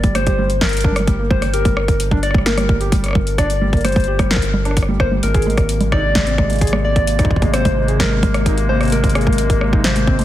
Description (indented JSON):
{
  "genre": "IDM",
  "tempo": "130 BPM",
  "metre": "4/4",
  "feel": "straight",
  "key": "G phrygian",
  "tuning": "A4 = 440 Hz",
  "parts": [
    { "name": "soft struck synth lead", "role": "melody", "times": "0.0-10.2 s", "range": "Bb4 to D5", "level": "-22 LUFS", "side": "left 2 dB", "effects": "chorus, tape echo" },
    { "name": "felt-muted upright piano", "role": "arpeggios", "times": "0.0-10.2 s", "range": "G3 to Ab4", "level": "-23 LUFS", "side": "right 2 dB", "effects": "vintage 12-bit sampler grit, digital delay" },
    { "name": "round analog bass", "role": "bass", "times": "0.0-10.2 s", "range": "G1 to Ab1", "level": "-19 LUFS", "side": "equal", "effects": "none" },
    { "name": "electro analog drum machine", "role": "drums", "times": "0.0-10.2 s", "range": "congas, hi-hat, rim click, snare drum", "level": "-22 LUFS", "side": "equal", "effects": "soft clipping on snare, digital delay" },
    { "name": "electronic kick drum", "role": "drums", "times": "0.0-10.2 s", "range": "none", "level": "-17 LUFS", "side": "equal", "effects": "none" },
    { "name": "hollow soft pad", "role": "sustained chords", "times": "5.2-10.2 s", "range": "C3 to Bb3", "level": "-22 LUFS", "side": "left 1 dB", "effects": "chorus" }
  ],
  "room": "light reverb",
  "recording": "dense, heavily limited modern master",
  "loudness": "-14 LUFS",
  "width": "side -13 dB against mid",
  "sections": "0.0-10.2 A section",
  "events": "none",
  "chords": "0.0 Gm; 5.2 Abadd9"
}